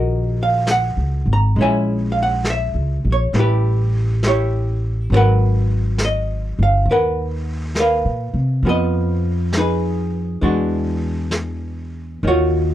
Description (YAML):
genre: jazz ballad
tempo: 68 BPM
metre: 4/4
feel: swing 69% on 8ths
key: unclear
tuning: A4 = 440 Hz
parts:
  - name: archtop guitar, miked and amplified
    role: accompaniment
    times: 0.0-12.7 s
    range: Eb3 to Bb5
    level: -20 LUFS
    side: equal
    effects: none
  - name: upright bass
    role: bass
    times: 0.0-12.7 s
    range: G1 to C3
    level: -19 LUFS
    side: equal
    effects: none
  - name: vintage brush drum kit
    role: drums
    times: 0.7-12.7 s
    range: brushed snare drum, hi-hat, snare drum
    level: -27 LUFS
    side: equal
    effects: none
room: little or no reverb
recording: dry, close 1970s-style studio recording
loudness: -16 LUFS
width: side -12 dB against mid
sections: 0.0-12.7 A section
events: none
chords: 0.0 Ebm9; 1.6 Bbm7b5; 3.3 A9; 5.1 Abm9; 8.6 Fm7b5; 10.4 E9; 12.2 Ebm9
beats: 0.67 | 1.56 2.45 3.34 4.23 | 5.11 5.99 6.87 7.76 | 8.65 9.53 10.42 11.32 | 12.23